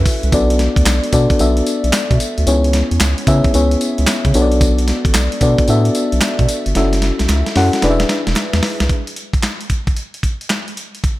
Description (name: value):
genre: R&B, new jack swing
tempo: 112 BPM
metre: 4/4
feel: swing 65% on 16ths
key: B dorian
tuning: A4 = 440 Hz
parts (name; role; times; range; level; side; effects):
- FM electric piano with soft pad layer; accompaniment; 0.0-8.9 s; B3 to F#5; -17 LUFS; left 2 dB; chorus, tremolo
- round analog bass; bass; 0.0-8.9 s; E1 to C#3; -16 LUFS; equal; none
- dusty soul sampler-style drum kit; drums; 0.1-11.2 s; handclaps, hi-hat, kick drum, snare drum, tambourine; -18 LUFS; equal; none
- group handclap; percussion; 0.9-8.5 s; none; -30 LUFS; right 6 dB; none
room: little or no reverb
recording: none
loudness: -13 LUFS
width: side -17 dB against mid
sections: 0.0-8.9 A section; 8.9-11.2 B section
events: drum fill 6.8-8.9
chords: 0.3 Bm7; 2.5 C#m7; 4.3 Bm7; 6.8 F#m7; 7.8 E7; 8.9 N.C.